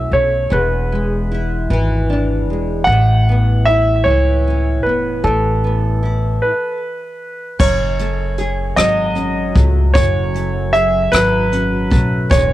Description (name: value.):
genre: six-eight pop ballad.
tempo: 51 BPM (dotted quarters).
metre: 6/8.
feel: straight.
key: A major.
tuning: A4 = 436 Hz.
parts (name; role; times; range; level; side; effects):
clear concert grand piano; melody; 0.0-12.5 s; A4 to F#5; -18 LUFS; right 1 dB; cassette tape, tape echo.
nylon-string guitar; accompaniment; 0.0-12.5 s; E2 to G#4; -21 LUFS; equal; double-tracked left and right, cassette tape.
upright bass; bass; 0.0-12.5 s; E1 to C#2; -17 LUFS; equal; none.
jazz brush drum kit; drums; 7.6-12.5 s; crash cymbal, hi-hat, kick drum, rim click; -17 LUFS; equal; none.
room: light reverb.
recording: home recording on cassette.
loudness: -13 LUFS.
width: side -14 dB against mid.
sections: 0.0-7.6 A section; 7.6-12.5 B section.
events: stop 6.4-7.6.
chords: 0.0 F#m7; 0.5 E7; 2.9 Aadd9; 7.6 F#madd9.